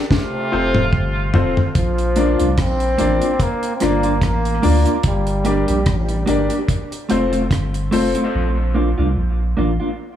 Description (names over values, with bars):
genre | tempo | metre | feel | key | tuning
dub reggae | 73 BPM | 4/4 | swing 56% on 16ths | Bb major | A4 = 441 Hz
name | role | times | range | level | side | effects
warm horn section | second line | 0.1-1.3 s | C3 to F4 | -24 LUFS | right 2 dB | dub echo
deep reggae drum kit | drums | 0.1-8.3 s | hi-hat, kick drum, rim click, snare drum, toms | -20 LUFS | equal | none
warm upright piano | stabs | 0.3-8.2 s | C4 to D5 | -23 LUFS | left 5 dB | dub echo
warm sub bass | bass | 0.5-9.8 s | F1 to D2 | -20 LUFS | equal | none
warm trombone | melody | 1.8-6.3 s | F3 to C4 | -22 LUFS | equal | dub echo
mellow electric guitar | accompaniment | 2.2-9.9 s | A3 to G4 | -22 LUFS | right 2 dB | dub echo
room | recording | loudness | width
light reverb, studio ambience | echo-heavy mix, studio reverb | -16 LUFS | side -10 dB against mid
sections
0.0-1.8 A section; 1.8-10.2 B section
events
break 0.0-1.8; drum fill 0.0-1.8; part muted 8.3-10.2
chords
0.1 F; 1.8 Bb; 5.0 Gm; 6.7 F; 8.3 Bb